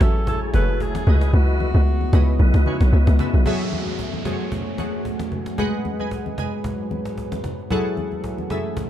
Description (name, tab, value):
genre	amapiano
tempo	113 BPM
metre	4/4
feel	swing 55% on 16ths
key	F# dorian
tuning	A4 = 440 Hz
part	breathy alto saxophone	melody	0.0-2.9 s	F#4 to B4	-29 LUFS	left 1 dB	tape echo
part	glassy digital keys	accompaniment	0.0-8.9 s	C#3 to A5	-27 LUFS	equal	chorus
part	deep dark ambient pad	sustained chords	0.0-8.9 s	F#2 to G#5	-29 LUFS	left 1 dB	chorus, built-in reverb
part	hollow log drum bass	bass	0.0-3.5 s	F#1 to C#2	-16 LUFS	equal	none
part	cajon	drums	0.0-8.9 s	none	-35 LUFS	equal	none
part	congas	percussion	0.0-8.9 s	none	-32 LUFS	left 1 dB	none
part	tonewheel organ	stabs	0.3-3.4 s	E4 to D#5	-31 LUFS	left 2 dB	chorus vibrato, stopped rotary speaker, tape echo
part	downlifter	sound effects	3.5-7.7 s	none	-34 LUFS	right 3 dB	none
room	little or no reverb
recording	dark, warm production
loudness	-19 LUFS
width	side -11 dB against mid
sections	0.0-3.5 A section; 3.5-8.9 B section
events	drop 0.0-3.5; kick muted 1.3-3.5; synth keys fill 2.7-3.5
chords	0.0 F#m9; 1.1 C#m11; 3.5 F#m9; 5.6 G#m7; 7.7 F#m9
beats	0.27 0.80 | 1.33 1.86 2.40 2.93 | 3.46 3.99 4.52 5.05 | 5.58 6.11 6.64 7.17 | 7.71 8.24 8.77